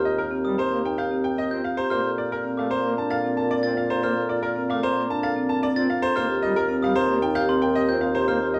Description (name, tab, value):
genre	classical, minimalist pattern music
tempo	113 BPM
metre	4/4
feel	straight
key	Bb major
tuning	A4 = 441 Hz
part	marimba with soft mallets	arpeggios	0.0-8.6 s	C4 to Bb4	-28 LUFS	equal	none
part	mellow bassoon	bass	0.0-8.6 s	Eb2 to Bb2	-30 LUFS	equal	none
part	bright concert grand piano	melody	0.1-8.6 s	Bb4 to A5	-29 LUFS	equal	none
part	pipe organ, foundations	accompaniment	0.4-8.6 s	G3 to C4	-35 LUFS	equal	none
part	glockenspiel with soft plastic mallets	arpeggios	0.4-8.5 s	Bb5 to A6	-33 LUFS	equal	none
room	moderate large studio reverb, RT60 1.2 s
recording	none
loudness	-24 LUFS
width	mono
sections	0.0-8.6 A section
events	none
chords	0.0 Ebadd9; 1.9 Bbmaj7; 6.2 Ebadd9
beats	0.32 0.85 1.38 | 1.91 2.44 2.97 3.50 | 4.04 4.57 5.10 5.63 | 6.16 6.69 7.22 7.75 | 8.28